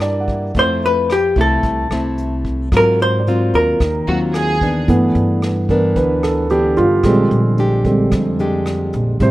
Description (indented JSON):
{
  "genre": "bossa nova",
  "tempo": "111 BPM",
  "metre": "4/4",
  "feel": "straight",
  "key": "unclear",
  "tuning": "A4 = 440 Hz",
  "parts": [
    { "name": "vintage hollow-body jazz guitar", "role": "melody", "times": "0.0-4.3 s", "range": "G4 to C5", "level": "-16 LUFS", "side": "left 1 dB", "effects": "none" },
    { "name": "nylon-string guitar", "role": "accompaniment", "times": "0.0-9.3 s", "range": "F2 to G4", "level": "-20 LUFS", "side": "left 1 dB", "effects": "none" },
    { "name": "warm grand piano", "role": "accompaniment", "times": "0.0-9.3 s", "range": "C3 to F#5", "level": "-16 LUFS", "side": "right 2 dB", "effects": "none" },
    { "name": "upright bass", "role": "bass", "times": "0.0-9.3 s", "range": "A1 to Ab2", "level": "-20 LUFS", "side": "equal", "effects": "none" },
    { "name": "vintage brush drum kit", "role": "drums", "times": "0.0-9.3 s", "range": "hi-hat, kick drum, rim click", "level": "-23 LUFS", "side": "equal", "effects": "none" },
    { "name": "warm studio violin section", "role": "second line", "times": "4.1-4.8 s", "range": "Gb4 to Ab4", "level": "-22 LUFS", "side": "right 2 dB", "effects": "none" }
  ],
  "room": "light reverb, small room ambience",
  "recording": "rough home demo mix",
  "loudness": "-13 LUFS",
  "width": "side -16 dB against mid",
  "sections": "0.0-4.9 A section; 4.9-9.3 B section",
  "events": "grand piano solo 4.9-9.3",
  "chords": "0.0 C9 (rootless); 0.6 Fmaj7; 2.7 Ab13; 4.9 G6; 7.0 Bb13"
}